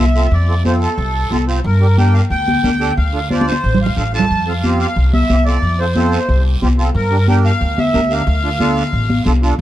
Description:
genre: latin, cumbia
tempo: 181 BPM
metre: 4/4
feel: straight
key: F major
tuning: A4 = 435 Hz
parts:
  - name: accordion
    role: melody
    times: 0.0-9.2 s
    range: A4 to A5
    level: -20 LUFS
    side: equal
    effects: light tremolo tuning, slapback echo
  - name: accordion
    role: accompaniment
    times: 0.0-9.5 s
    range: C4 to C5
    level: -23 LUFS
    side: right 4 dB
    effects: light tremolo tuning
  - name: upright bass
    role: bass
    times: 0.0-9.6 s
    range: A1 to G2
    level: -15 LUFS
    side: equal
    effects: none
  - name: guiro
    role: percussion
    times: 0.2-9.6 s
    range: none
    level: -31 LUFS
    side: right 4 dB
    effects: none
  - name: congas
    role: percussion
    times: 0.6-9.4 s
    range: none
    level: -20 LUFS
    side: left 1 dB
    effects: none
room: light reverb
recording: dark, warm production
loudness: -13 LUFS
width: side -13 dB against mid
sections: 0.0-9.6 A section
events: drum fill 3.3-4.3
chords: 0.0 F; 1.6 Gm; 3.0 Dm; 4.3 F; 7.0 Gm; 8.3 Dm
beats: | 0.32 0.66 0.99 1.32 | 1.65 1.98 2.31 2.64 | 2.98 3.31 3.64 3.97 | 4.30 4.63 4.96 5.29 | 5.63 5.96 6.29 6.62 | 6.95 7.28 7.61 7.95 | 8.28 8.61 8.94 9.27 | 9.60

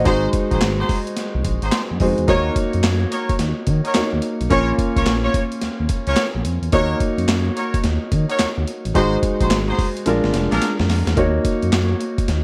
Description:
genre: R&B, new jack swing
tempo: 108 BPM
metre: 4/4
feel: swing 64% on 16ths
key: Eb dorian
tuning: A4 = 436 Hz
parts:
  - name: clear grand piano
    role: accompaniment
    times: 0.0-12.4 s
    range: Ab3 to Eb5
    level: -24 LUFS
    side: equal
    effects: none
  - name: smooth gliding synth bass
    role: bass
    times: 0.0-12.4 s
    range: F1 to Eb3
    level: -23 LUFS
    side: equal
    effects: none
  - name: warm horn section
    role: stabs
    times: 0.1-10.7 s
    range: Db4 to Db5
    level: -26 LUFS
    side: equal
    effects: none
  - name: boom bap sampler-style drum kit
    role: drums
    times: 0.1-12.4 s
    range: handclaps, hi-hat, kick drum, snare drum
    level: -24 LUFS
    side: equal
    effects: gated reverb
room: light reverb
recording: none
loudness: -19 LUFS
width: mono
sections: 0.0-11.2 A section; 11.2-12.4 B section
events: drum fill 10.1-11.2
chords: 0.1 Ab7; 2.3 Ebm7; 4.5 Bbm; 6.7 Ebm7; 9.0 Ab7; 10.1 Bb7; 11.2 Ebm7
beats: | 0.06 0.62 1.17 1.73 | 2.28 2.84 3.40 3.95 | 4.51 5.06 5.62 6.17 | 6.73 7.28 7.84 8.39 | 8.95 9.51 10.06 10.62 | 11.17 11.73 12.28

